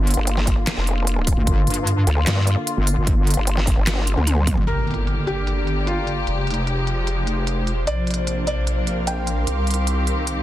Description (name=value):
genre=heavy wobble dubstep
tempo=150 BPM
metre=4/4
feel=half-time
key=G phrygian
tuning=A4 = 440 Hz
part: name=rich studio string section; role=sustained chords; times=0.0-10.4 s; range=C3 to G4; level=-28 LUFS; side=left 1 dB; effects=sidechain pumping, low-pass filter
part: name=wobble bass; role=bass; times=0.0-10.4 s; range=F1 to G2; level=-22 LUFS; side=equal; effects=chorus, overdrive
part: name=dubstep drum kit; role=drums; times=0.1-10.4 s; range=handclaps, hi-hat, snare drum, toms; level=-25 LUFS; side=equal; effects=low-pass filter on hats, soft clipping on snare, low-pass filter on snare, low-pass filter on toms
part: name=vowel-sweep wobble bass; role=bass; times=0.2-4.6 s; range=F1 to G2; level=-19 LUFS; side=equal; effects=chorus, overdrive
part: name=electronic kick drum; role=drums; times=0.5-4.6 s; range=none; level=-20 LUFS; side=equal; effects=none
part: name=felt-muted upright piano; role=melody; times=4.7-9.6 s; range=F4 to G5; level=-28 LUFS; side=equal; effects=ping-pong delay
part: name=impact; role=sound effects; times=4.7-6.3 s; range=none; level=-29 LUFS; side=equal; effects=none
part: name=ethereal airy pad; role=texture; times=5.2-10.4 s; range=C4 to D6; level=-29 LUFS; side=equal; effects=ensemble chorus, built-in reverb, sidechain pumping
room=little or no reverb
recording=dense, heavily limited modern master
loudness=-18 LUFS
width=side -14 dB against mid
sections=0.0-4.7 A section; 4.7-10.4 B section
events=drop 0.0-4.7; drum fill 3.9-4.7; impact 4.7-6.3; filter sweep on drum 4.7-10.4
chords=0.0 Gm; 6.3 Fmadd9; 7.9 Bbadd9; 9.5 Cm